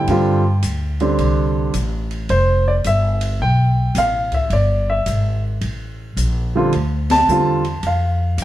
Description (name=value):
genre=jazz piano trio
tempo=108 BPM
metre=4/4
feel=swing 66% on 8ths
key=unclear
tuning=A4 = 440 Hz
part: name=warm concert grand piano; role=melody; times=0.0-8.4 s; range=D3 to A5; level=-18 LUFS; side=right 1 dB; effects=none
part: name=upright bass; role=bass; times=0.0-8.4 s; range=F1 to G2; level=-19 LUFS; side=equal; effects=none
part: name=open jazz drum kit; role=drums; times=0.1-8.4 s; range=hi-hat, kick drum, ride cymbal, snare drum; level=-29 LUFS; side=left 2 dB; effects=none
room=moderate stone room reverb, RT60 1.1 s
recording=band playing live in one room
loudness=-15 LUFS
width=side -14 dB against mid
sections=0.0-8.4 A section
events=band accent 7.0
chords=0.1 G5; 1.2 Csus2; 2.3 Fmaj9; 4.5 E7#9/G; 5.6 Bbmaj7(no3)/A; 6.7 Dmadd9